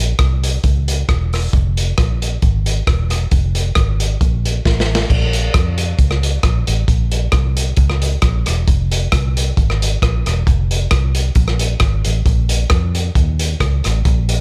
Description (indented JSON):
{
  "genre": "ska",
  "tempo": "134 BPM",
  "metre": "4/4",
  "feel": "swing 54% on 8ths",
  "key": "Bb minor",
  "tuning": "A4 = 439 Hz",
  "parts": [
    { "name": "vintage muted fingered electric bass", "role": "bass", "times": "0.0-14.4 s", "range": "E1 to F2", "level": "-19 LUFS", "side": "equal", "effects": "none" },
    { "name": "crunchy breakbeat drum kit", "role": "drums", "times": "0.2-14.4 s", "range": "crash cymbal, hi-hat, kick drum, rim click, snare drum", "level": "-19 LUFS", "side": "equal", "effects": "none" }
  ],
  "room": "little or no reverb",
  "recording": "none",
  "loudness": "-16 LUFS",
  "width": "mono",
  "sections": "0.0-5.1 A section; 5.1-14.4 B section",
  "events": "drum fill 4.7-5.1",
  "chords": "none"
}